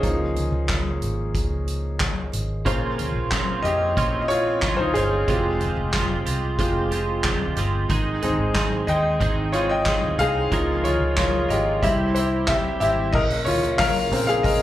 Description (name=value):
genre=piano-driven pop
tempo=92 BPM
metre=4/4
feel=straight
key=unclear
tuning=A4 = 440 Hz
part: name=bright baby grand piano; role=accompaniment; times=0.0-14.6 s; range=Db3 to G5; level=-23 LUFS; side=left 1 dB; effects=slapback echo
part: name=vintage muted fingered electric bass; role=bass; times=0.0-14.6 s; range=F1 to F2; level=-27 LUFS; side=equal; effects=none
part: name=soft-mallet drum kit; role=drums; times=0.0-14.6 s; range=crash cymbal, handclaps, hi-hat, kick drum, snare drum, toms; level=-26 LUFS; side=equal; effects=none
part: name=twelve-string electric guitar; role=riff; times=2.7-13.1 s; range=F2 to Bb4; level=-27 LUFS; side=right 4 dB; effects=analog chorus, slapback echo
part: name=tonewheel organ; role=sustained chords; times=13.1-14.6 s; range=Db3 to Bb3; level=-31 LUFS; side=equal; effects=overdrive, chorus vibrato, slow rotary speaker
room=light reverb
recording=live gig heard through the venue's PA, club reverb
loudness=-20 LUFS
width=side -13 dB against mid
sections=0.0-13.1 A section; 13.1-14.6 B section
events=grand piano solo 0.0-13.1, 13.1-14.6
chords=0.0 Db6; 2.7 Bbmadd9; 5.3 Fmadd9; 7.9 Ab; 10.5 Db6; 11.8 C; 13.1 Bbmadd9